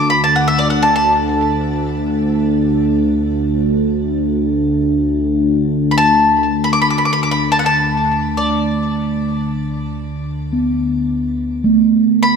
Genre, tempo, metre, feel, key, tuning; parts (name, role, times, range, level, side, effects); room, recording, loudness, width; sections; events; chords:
world meditative, free-time meditation music; free time; A4 = 440 Hz
mandolin; melody; 0.0-12.4 s; D5 to D6; -16 LUFS; left 2 dB; shimmer reverb, tape echo
deep dark ambient pad; drone; 0.0-12.4 s; D2; -17 LUFS; equal; chorus, built-in reverb
bronze singing bowl; texture; 0.0-4.8, 10.5-12.4 s; A3 to B3; -20 LUFS; right 4 dB; shimmer reverb
wet scoring stage reverb, RT60 1.8 s, studio ambience; -13 LUFS; side -6 dB against mid
0.0-11.4 A section